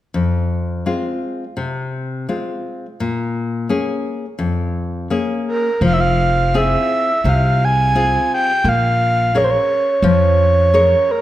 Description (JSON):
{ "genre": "fado-style ballad", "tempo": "85 BPM", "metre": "4/4", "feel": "rubato", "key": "F harmonic minor", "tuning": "A4 = 439 Hz", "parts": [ { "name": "nylon-string guitar", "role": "accompaniment", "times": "0.1-11.2 s", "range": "F2 to Db5", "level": "-20 LUFS", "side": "left 3 dB", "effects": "none" }, { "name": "breathy flute-like synth lead", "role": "melody", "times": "5.5-11.2 s", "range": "Bb4 to Ab5", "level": "-15 LUFS", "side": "right 2 dB", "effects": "chorus" }, { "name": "upright bass", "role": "bass", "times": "5.8-10.9 s", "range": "F1 to F2", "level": "-17 LUFS", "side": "equal", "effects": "none" } ], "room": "moderate recital hall reverb, RT60 1.3 s", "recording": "none", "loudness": "-15 LUFS", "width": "side -14 dB against mid", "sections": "0.1-5.8 A section; 5.8-11.2 B section", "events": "none", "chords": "0.1 Fm; 3.0 Bbm7; 5.8 Fm; 8.6 Bbm7" }